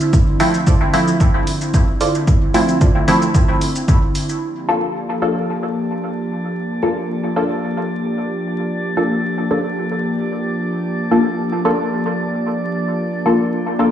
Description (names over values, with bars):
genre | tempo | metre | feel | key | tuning
dub techno | 112 BPM | 4/4 | straight | G dorian | A4 = 440 Hz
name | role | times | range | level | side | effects
airy breathy pad | sustained chords | 0.0-13.9 s | D3 to G4 | -22 LUFS | equal | chorus, sidechain pumping
electronic shaker and hi-hat | drums | 0.0-4.4 s | none | -29 LUFS | right 1 dB | low-pass filter on perc, low-pass filter on hats
electronic kick drum | drums | 0.1-4.0 s | none | -14 LUFS | equal | none
filtered dub chord stab | stabs | 0.4-13.9 s | F3 to A4 | -19 LUFS | left 1 dB | chorus, phaser, sidechain pumping, dub echo
filtered dub chord stab | riff | 0.7-2.9 s | F4 to D5 | -26 LUFS | right 4 dB | chorus, sidechain pumping, dub echo
drifting glass-harmonics texture | texture | 5.0-13.9 s | D4 to D5 | -27 LUFS | equal | chorus, built-in reverb, sidechain pumping
room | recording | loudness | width
moderate lush hall reverb, RT60 1.9 s, digital ambience | vinyl crackle, studio reverb | -16 LUFS | side -10 dB against mid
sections
0.0-4.4 A section; 4.4-13.9 B section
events
none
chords
0.0 Dm7; 4.4 Gm7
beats
| 0.13 0.67 1.20 1.74 | 2.27 2.81 3.35 3.88 | 4.42 4.95 5.49 6.03 | 6.56 7.10 7.63 8.17 | 8.70 9.24 9.78 10.31 | 10.85 11.38 11.92 12.45 | 12.99 13.53